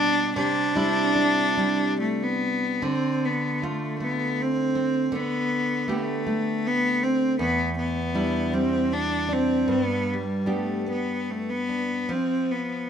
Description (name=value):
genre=celtic folk, Celtic slow air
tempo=70-81 BPM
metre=3/4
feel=rubato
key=D dorian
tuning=A4 = 440 Hz
part: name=clear cello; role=melody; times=0.0-12.9 s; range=G3 to D4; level=-24 LUFS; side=left 1 dB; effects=none
part: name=nylon-string guitar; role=accompaniment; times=0.0-12.9 s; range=E2 to G4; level=-28 LUFS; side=right 2 dB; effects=none
room=moderate studio reverb, RT60 0.5 s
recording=band playing live in one room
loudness=-22 LUFS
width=side -8 dB against mid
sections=0.0-2.8 A section; 2.8-12.9 B section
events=none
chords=0.4 Cadd9; 2.8 Dm7; 5.1 Gadd9/D; 7.4 Em7; 9.7 G; 12.1 Fsus2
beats=| 0.36 1.16 2.00 | 2.83 3.62 4.38 | 5.13 5.88 6.64 | 7.39 8.15 8.91 | 9.69 10.47 11.28 | 12.10